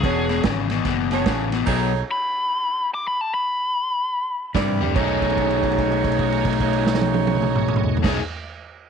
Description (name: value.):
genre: electric blues shuffle.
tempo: 146 BPM.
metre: 4/4.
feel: swing 63% on 8ths.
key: B mixolydian.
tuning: A4 = 442 Hz.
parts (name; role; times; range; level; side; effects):
biting lead guitar; melody; 0.0-4.5 s; G#4 to D6; -23 LUFS; left 2 dB; overdrive.
bright tonewheel organ; accompaniment; 0.0-0.3, 4.9-8.2 s; A3 to G#4; -29 LUFS; right 12 dB; overdrive, chorus vibrato, slow rotary speaker.
overdriven electric guitar; riff; 0.0-1.9, 4.5-8.2 s; E2 to G#4; -23 LUFS; left 12 dB; none.
mellow saxophone section; stabs; 0.0-2.0, 4.5-8.2 s; D4 to D5; -25 LUFS; right 9 dB; none.
fingered electric bass; bass; 0.0-2.0, 4.5-8.2 s; E1 to G2; -26 LUFS; right 1 dB; none.
vintage drum kit; drums; 0.0-1.8, 4.5-8.1 s; crash cymbal, kick drum, ride cymbal, snare drum, toms; -25 LUFS; right 4 dB; none.
room: moderate spring reverb, RT60 1.3 s.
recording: 1960s-style stereo with parts hard left and right.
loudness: -19 LUFS.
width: side -6 dB against mid.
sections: 0.0-5.0 A section; 5.0-8.2 B section.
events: drum fill 4.5-5.0; held note 5.0-8.0.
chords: 0.0 E13; 1.7 B13; 4.5 C9; 5.0 B13.